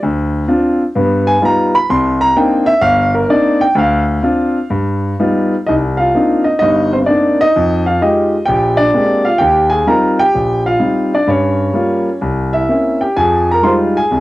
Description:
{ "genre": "solo jazz", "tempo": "128 BPM", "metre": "4/4", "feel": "swing 68% on 8ths, rubato", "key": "C minor", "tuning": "A4 = 441 Hz", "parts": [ { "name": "warm concert grand piano", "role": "solo", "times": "0.0-14.2 s", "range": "G1 to C6", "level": "-11 LUFS", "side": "equal", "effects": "cassette tape" } ], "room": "moderate studio ambience, RT60 0.5 s", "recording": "home recording on cassette", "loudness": "-11 LUFS", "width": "side -17 dB against mid", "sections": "0.0-5.7 A section; 5.7-14.2 B section", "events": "grand piano solo 0.0-5.7", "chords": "0.0 Dm7; 1.0 Gaug7; 1.9 Cm9; 3.8 Dm7; 4.7 Gaug7; 5.7 Cm9; 7.6 Fm9; 8.5 Bb13; 9.4 Eb69; 11.3 Gm7b5; 12.2 C7b9; 13.2 Fm9", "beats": "| 0.02 0.49 0.95 1.41 | 1.88 2.35 2.81 3.28 | 3.75 4.22 4.70 5.19 | 5.67 6.14 6.62 7.08 | 7.55 8.02 8.48 8.94 | 9.40 9.87 10.33 10.80 | 11.27 11.74 12.21 12.69 | 13.17 13.64 14.12" }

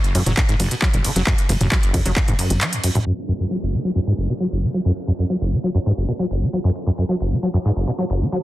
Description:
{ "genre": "driving peak-time techno", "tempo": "134 BPM", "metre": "4/4", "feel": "straight", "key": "unclear", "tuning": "A4 = 440 Hz", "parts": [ { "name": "acid bass, saw", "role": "riff", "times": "0.0-8.4 s", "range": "F#1 to F#3", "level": "-20 LUFS", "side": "equal", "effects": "lush chorus, sidechain pumping" }, { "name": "techno drum kit", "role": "drums", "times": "0.0-8.4 s", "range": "handclaps, hi-hat, ride cymbal, toms", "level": "-22 LUFS", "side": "equal", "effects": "low-pass filter on hats, small room ambience, low-pass filter on cymbals, low-pass filter on toms, low-pass filter on snare" }, { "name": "tight sequencer bass", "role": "bass", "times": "0.1-2.6 s", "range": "F#1 to F#2", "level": "-20 LUFS", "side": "equal", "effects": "sidechain pumping" }, { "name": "electronic kick drum", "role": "drums", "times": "0.4-2.3 s", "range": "none", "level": "-19 LUFS", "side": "equal", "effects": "small room ambience" }, { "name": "downlifter", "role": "sound effects", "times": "3.1-6.6 s", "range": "none", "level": "-34 LUFS", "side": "right 1 dB", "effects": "none" } ], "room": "light reverb", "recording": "dense, heavily limited modern master, low-pass filter", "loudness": "-18 LUFS", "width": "side -16 dB against mid", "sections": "0.0-3.1 A section; 3.1-8.4 B section", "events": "drop 0.0-3.1; filter sweep 3.1-8.4", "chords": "none", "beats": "0.37 0.82 | 1.27 1.72 2.16 2.61 | 3.06 3.51 3.96 4.40 | 4.85 5.30 5.75 6.19 | 6.64 7.09 7.54 7.99" }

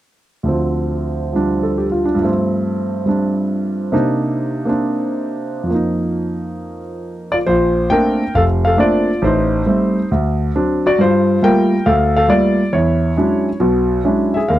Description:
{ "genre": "solo jazz", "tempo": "137 BPM", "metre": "4/4", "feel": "swing 68% on 8ths, rubato", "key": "Bb major", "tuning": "A4 = 440 Hz", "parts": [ { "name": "warm concert grand piano", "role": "solo", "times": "0.4-14.6 s", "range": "F1 to G5", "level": "-14 LUFS", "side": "equal", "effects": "none" } ], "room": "little or no reverb", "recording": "dry, close 1970s-style studio recording", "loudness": "-14 LUFS", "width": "side -14 dB against mid", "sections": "0.5-7.5 A section; 7.5-14.6 B section", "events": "none", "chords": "0.5 Dm7; 2.2 G9sus4; 3.9 Cm9; 5.7 F7sus4; 7.5 Bbmaj9; 9.2 Am7b5; 10.1 D7; 11.0 Gm9; 12.7 E13", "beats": "| 0.47 0.90 1.34 1.78 | 2.21 2.65 3.08 3.51 | 3.94 4.38 4.82 5.26 | 5.70 6.13 6.57 7.02 | 7.47 7.91 8.35 8.79 | 9.23 9.67 10.11 10.55 | 10.98 11.42 11.86 12.29 | 12.73 13.17 13.61 14.05 | 14.50" }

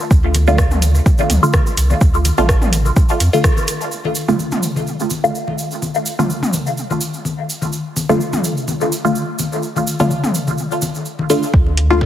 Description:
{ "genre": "dub techno", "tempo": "126 BPM", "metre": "4/4", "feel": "swing 54% on 16ths", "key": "D minor", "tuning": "A4 = 439 Hz", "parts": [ { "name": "tube shaker", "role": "percussion", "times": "0.0-11.5 s", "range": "none", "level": "-27 LUFS", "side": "right 3 dB", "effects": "none" }, { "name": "warm sub bass", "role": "bass", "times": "0.1-3.3, 11.5-12.1 s", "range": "A1 to F2", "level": "-15 LUFS", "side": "equal", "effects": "sidechain pumping" }, { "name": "electronic kick drum", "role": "drums", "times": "0.1-3.5, 11.5-12.1 s", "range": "none", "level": "-13 LUFS", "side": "equal", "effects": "none" }, { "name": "soft vintage rhythm box", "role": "drums", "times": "0.3-3.8, 11.8-11.9 s", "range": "hi-hat, rim click", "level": "-22 LUFS", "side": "equal", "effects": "overdrive, low-pass filter on hats, low-pass filter on snare, dub echo" }, { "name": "electronic congas and toms", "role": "percussion", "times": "0.3-12.1 s", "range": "none", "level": "-22 LUFS", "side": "left 2 dB", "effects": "sidechain pumping on perc, sidechain pumping on toms, dub echo" }, { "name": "filtered dub chord stab", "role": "stabs", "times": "0.5-12.0 s", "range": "D3 to F4", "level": "-19 LUFS", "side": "equal", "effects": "phaser, sidechain pumping, dub echo" } ], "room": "light reverb, digital ambience", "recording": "heavily compressed radio sound, multiband compression", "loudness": "-14 LUFS", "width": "side -11 dB against mid", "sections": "0.0-3.9 A section; 3.9-11.5 B section", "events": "band accent 3.4", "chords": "0.0 Dm", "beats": "| 0.11 0.58 1.06 1.54 | 2.01 2.49 2.96 3.44 | 3.92 4.39 4.87 5.35 | 5.82 6.30 6.77 7.25 | 7.73 8.20 8.68 9.15 | 9.63 10.11 10.58 11.06 | 11.54 12.01" }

